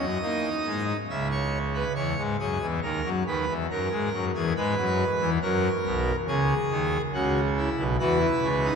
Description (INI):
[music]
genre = classical, baroque-style 3-part fugue for pipe organ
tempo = 70 BPM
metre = 4/4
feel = straight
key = unclear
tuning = A4 = 440 Hz
[part]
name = pipe organ, full organ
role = solo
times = 0.0-8.8 s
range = B1 to E5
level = -24 LUFS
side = equal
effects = none
[sound]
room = wet cathedral reverb, RT60 5.7 s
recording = none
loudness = -24 LUFS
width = side -6 dB against mid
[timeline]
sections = 0.0-1.1 A section; 1.1-8.8 B section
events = none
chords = 0.0 B (rootless); 1.1 C#madd11; 2.8 D#m; 4.5 G#m7; 6.3 C#m; 8.0 E5